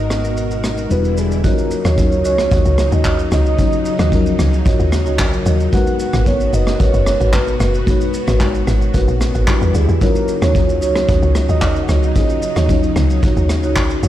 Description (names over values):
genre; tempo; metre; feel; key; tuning
amapiano; 112 BPM; 4/4; straight; Eb minor; A4 = 440 Hz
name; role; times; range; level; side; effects
soft octave-layered synth lead; melody; 0.0-13.5 s; Ab4 to Gb5; -22 LUFS; right 2 dB; chorus, tremolo, ping-pong delay
FM electric piano with soft pad layer; accompaniment; 0.0-14.1 s; F3 to Db5; -23 LUFS; left 4 dB; chorus
string machine, violas; sustained chords; 0.0-14.1 s; Cb3 to Bb4; -25 LUFS; left 1 dB; ensemble chorus
hollow-body short-scale fingered electric bass; bass; 0.0-1.4 s; E1 to Ab1; -20 LUFS; equal; none
vintage brush drum kit; drums; 0.1-14.1 s; handclaps, kick drum, rim click, shaker; -19 LUFS; equal; none
marimba with medium mallets; stabs; 1.4-14.1 s; Eb4 to Eb5; -24 LUFS; right 2 dB; ping-pong delay
woody log drum bass; bass; 1.9-14.1 s; Gb1 to E2; -16 LUFS; equal; none
room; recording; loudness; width
studio ambience; played on a big sound system in a bare room, stone room reverb; -13 LUFS; side -13 dB against mid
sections
0.0-1.4 A section; 1.4-14.1 B section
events
filter sweep 0.0-1.4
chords
0.0 Abm9; 0.9 Em7; 1.4 Ebm7; 5.7 Abm9; 9.5 Em7; 10.0 Ebm7